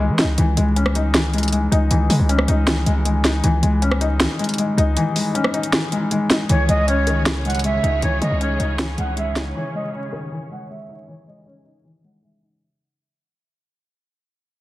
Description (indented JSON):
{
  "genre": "hip hop, trap",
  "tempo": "157 BPM",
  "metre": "4/4",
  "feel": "half-time",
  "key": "C# minor",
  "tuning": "A4 = 440 Hz",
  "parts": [
    { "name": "felt-muted upright piano", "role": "accompaniment", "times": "0.0-12.6 s", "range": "D#3 to D#4", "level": "-22 LUFS", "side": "left 2 dB", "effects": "low-pass filter" },
    { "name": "hard-hitting 808-style bass", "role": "bass", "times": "0.0-9.5 s", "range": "C#2 to E3", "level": "-19 LUFS", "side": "equal", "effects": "none" },
    { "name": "trap drum kit", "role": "drums", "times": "0.2-9.5 s", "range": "hi-hat, rim click, snare drum", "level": "-22 LUFS", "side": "equal", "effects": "overdrive, vintage 12-bit sampler grit" },
    { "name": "breathy reedy jazz flute", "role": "melody", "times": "6.5-12.4 s", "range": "C#5 to F#5", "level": "-24 LUFS", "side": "right 2 dB", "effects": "low-pass filter, digital delay" },
    { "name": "bright symphonic string section", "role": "sustained chords", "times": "6.5-12.6 s", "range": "C#3 to C#5", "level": "-31 LUFS", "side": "equal", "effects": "low-pass filter" }
  ],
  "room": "light reverb, small room ambience",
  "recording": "dense, heavily limited modern master, vinyl crackle",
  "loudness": "-17 LUFS",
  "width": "side -16 dB against mid",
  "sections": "0.0-6.5 A section; 6.5-12.6 B section",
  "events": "break 0.0-0.4; kick muted 5.0-6.5; fade-out 6.5-12.6; filter sweep 6.5-12.6",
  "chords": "0.0 C#madd9"
}